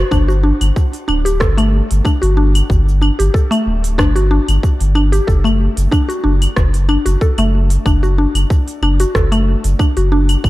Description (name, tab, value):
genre	organic downtempo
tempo	93 BPM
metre	4/4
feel	swing 53% on 16ths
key	D major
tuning	A4 = 441 Hz
part	mallet-like synth pluck	arpeggios	0.0-10.4 s	A3 to A4	-18 LUFS	left 1 dB	chorus, tape echo, shimmer reverb
part	warm sub bass	bass	0.0-10.5 s	D1 to G1	-14 LUFS	equal	none
part	electronic kick drum	drums	0.1-10.5 s	none	-14 LUFS	equal	none
part	organic electronic drum kit	drums	0.1-10.5 s	cabasa, claves, hi-hat, rim click	-24 LUFS	equal	none
room	light reverb, digital ambience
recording	dark, warm production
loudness	-12 LUFS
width	side -17 dB against mid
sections	0.1-10.5 A section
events	none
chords	0.1 G5; 5.3 D/F#